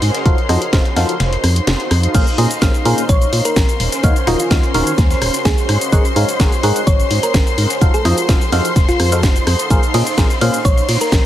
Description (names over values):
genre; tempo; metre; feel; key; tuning
piano house; 127 BPM; 4/4; straight; Bb minor; A4 = 439 Hz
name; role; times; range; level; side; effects
rich symphonic string section; sustained chords; 0.0-11.3 s; C5 to C6; -23 LUFS; left 1 dB; sidechain pumping
organ-like FM bass; bass; 0.0-11.2 s; Eb1 to Bb2; -17 LUFS; equal; sidechain pumping
dusty soul sampler-style drum kit; drums; 0.0-11.2 s; hi-hat, snare drum; -30 LUFS; left 1 dB; none
house drum kit; drums; 0.0-11.2 s; crash cymbal, hi-hat, ride cymbal, rim click, shaker, snare drum; -21 LUFS; left 1 dB; none
granular cloud pad; texture; 0.0-11.3 s; Db4 to Ab5; -24 LUFS; right 1 dB; built-in reverb, sidechain pumping
barking FM electric piano; riff; 0.3-10.6 s; Bb2 to Gb5; -20 LUFS; equal; phaser, sidechain pumping, low-pass filter, tape echo
electronic kick drum; drums; 0.3-11.2 s; none; -14 LUFS; equal; none
thumb-piano-like synth pluck; melody; 3.1-11.2 s; F4 to Db5; -22 LUFS; equal; chorus, tape echo
room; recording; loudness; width
light reverb, digital ambience; heavily compressed radio sound; -12 LUFS; side -12 dB against mid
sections
0.0-2.1 A section; 2.1-11.3 B section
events
kick drops out 1.2-2.1; drop 2.1-11.3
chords
0.3 F7b9; 2.1 Bbm9; 3.8 Ebm9; 5.7 Ab9sus4; 7.8 F7b9; 9.7 Bbm9